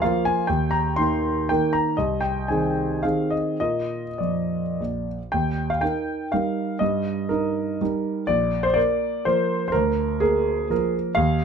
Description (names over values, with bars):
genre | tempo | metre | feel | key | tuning
classical, romantic triple-time dance for piano with dotted rhythms | 96-133 BPM | 3/4 | rubato | Eb major | A4 = 440 Hz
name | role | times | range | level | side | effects
warm concert grand piano | solo | 0.0-11.4 s | Bb1 to C6 | -21 LUFS | right 1 dB | none
room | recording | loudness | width
little or no reverb | close, detailed microphones | -21 LUFS | side -6 dB against mid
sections
0.0-5.3 A section; 5.3-11.4 B section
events
none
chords
0.5 Eb5; 2.0 Ab/C; 3.6 Bb; 5.3 Eb; 6.8 Eb/G; 8.3 Bb; 9.7 Bb/D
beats
0.01 | 0.47 0.97 1.50 | 1.98 2.48 3.03 | 3.59 4.19 4.79 | 5.33 5.82 6.31 | 6.80 7.29 7.80 | 8.28 8.77 9.28 | 9.75 10.23 10.71 | 11.17